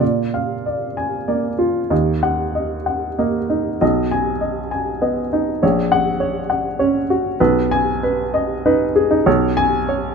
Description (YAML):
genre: classical, romantic character piece for solo piano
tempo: 61-69 BPM (dotted quarters)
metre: 6/8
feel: rubato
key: unclear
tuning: A4 = 440 Hz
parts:
  - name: warm upright piano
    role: solo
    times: 0.0-10.1 s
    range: A#1 to G#5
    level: -16 LUFS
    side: equal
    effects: none
room: light reverb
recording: close, detailed microphones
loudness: -16 LUFS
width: side -5 dB against mid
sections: 0.0-10.1 A section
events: none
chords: 0.0 A#7; 1.9 D#m; 3.8 G#m/B; 5.6 F#/A#; 7.4 G#m/B; 9.3 C#7(no3)/B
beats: | 0.01 0.98 | 1.91 2.87 | 3.82 4.72 | 5.62 6.50 | 7.39 8.33 | 9.26